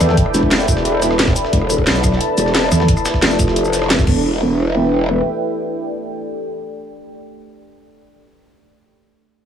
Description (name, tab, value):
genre	dark technical drum and bass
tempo	177 BPM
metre	4/4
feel	straight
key	E phrygian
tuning	A4 = 441 Hz
part	dark analog pad	sustained chords	0.0-7.4 s	E4 to A5	-22 LUFS	right 1 dB	chorus, sidechain pumping
part	growl bass	bass	0.0-5.2 s	E1 to E2	-16 LUFS	equal	chorus
part	breakbeat sampler-style drum kit	drums	0.0-4.1 s	hi-hat, snare drum	-27 LUFS	equal	high-pass filter on snare, high-pass filter on hats, high-pass filter on room
part	drum and bass drum kit	drums	0.0-4.1 s	crash cymbal, hi-hat, rim click, shaker, snare drum	-19 LUFS	equal	none
part	deep dark ambient pad	texture	0.0-7.7 s	A4 to B5	-23 LUFS	left 2 dB	chorus, built-in reverb, sidechain pumping
part	electronic kick drum	drums	0.2-4.1 s	none	-18 LUFS	equal	none
room	light reverb, digital ambience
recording	small room ambience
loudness	-14 LUFS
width	side -8 dB against mid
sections	0.0-4.2 A section; 4.2-7.0 B section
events	drop 0.0-4.2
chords	0.0 Em